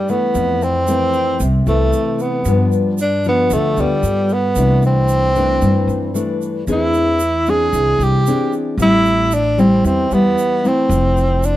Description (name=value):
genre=bossa nova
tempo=114 BPM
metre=4/4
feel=straight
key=C major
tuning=A4 = 440 Hz
part: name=breathy tenor saxophone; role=melody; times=0.0-11.6 s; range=G3 to G#4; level=-17 LUFS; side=right 1 dB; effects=none
part: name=nylon-string guitar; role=accompaniment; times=0.0-11.6 s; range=F2 to A4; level=-18 LUFS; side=left 2 dB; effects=none
part: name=egg shaker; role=percussion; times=0.1-11.6 s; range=none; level=-34 LUFS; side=right 7 dB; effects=none
part: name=upright bass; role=bass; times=0.3-11.6 s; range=F1 to G2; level=-19 LUFS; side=right 1 dB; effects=none
room=light reverb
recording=dark, warm production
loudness=-13 LUFS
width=side -14 dB against mid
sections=0.0-11.6 A section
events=none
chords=0.4 Fmaj7; 2.5 G7; 4.0 G9; 4.6 C69; 6.7 E7alt; 8.8 Am7; 10.9 Fmaj7